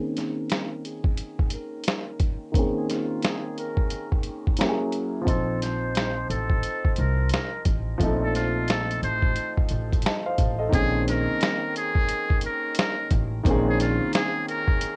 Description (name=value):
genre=lo-fi hip hop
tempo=88 BPM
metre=4/4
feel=swing 64% on 16ths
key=Bb minor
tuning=A4 = 440 Hz
part: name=trumpet with metal mute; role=melody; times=0.0-15.0 s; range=F4 to C5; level=-32 LUFS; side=equal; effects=low-pass filter
part: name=warm upright piano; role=accompaniment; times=0.0-15.0 s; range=Eb3 to A5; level=-31 LUFS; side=equal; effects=low-pass filter, plate reverb
part: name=trip hop sampler-style drum kit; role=drums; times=0.2-15.0 s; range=hi-hat, kick drum, snare drum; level=-27 LUFS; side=equal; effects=none
part: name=upright bass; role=bass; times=5.3-14.0 s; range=A1 to C2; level=-30 LUFS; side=equal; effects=none
room=light reverb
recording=cassette tape, nothing above 10.5 kHz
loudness=-25 LUFS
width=mono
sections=0.0-10.7 A section; 10.7-15.0 B section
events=filter sweep 0.0-10.7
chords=0.0 Bbm11; 4.6 Gb9; 5.3 F7; 10.7 Bbm11